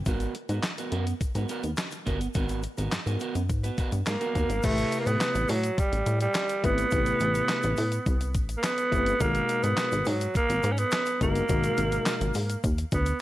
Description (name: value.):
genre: early-eighties boogie funk.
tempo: 105 BPM.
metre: 4/4.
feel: straight.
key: unclear.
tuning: A4 = 441 Hz.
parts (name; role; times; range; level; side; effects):
plucky analog bass; bass; 0.0-13.1 s; G1 to A2; -28 LUFS; equal; none.
electric guitar at the edge of break-up; riff; 0.1-4.5 s; B3 to B4; -34 LUFS; right 4 dB; wide subtle chorus.
detuned 8-bit digital drum machine; drums; 0.1-13.2 s; crash cymbal, handclaps, hi-hat, kick drum, snare drum; -30 LUFS; equal; none.
egg shaker; percussion; 0.1-13.2 s; none; -46 LUFS; left 8 dB; none.
growling alto saxophone; melody; 4.1-13.2 s; F#3 to C#4; -27 LUFS; right 2 dB; none.
tine electric piano; accompaniment; 4.6-12.4 s; B2 to B4; -31 LUFS; left 4 dB; none.
room: light reverb, digital ambience.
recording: none.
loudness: -24 LUFS.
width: side -15 dB against mid.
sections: 0.0-4.6 A section; 4.6-13.2 B section.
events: none.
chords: 0.1 G#m9; 4.6 Am9; 9.2 G#m9.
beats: | 0.06 0.63 1.21 1.78 | 2.35 2.92 3.49 4.06 | 4.63 5.21 5.78 6.35 | 6.92 7.49 8.06 8.63 | 9.21 9.78 10.35 10.92 | 11.49 12.06 12.63.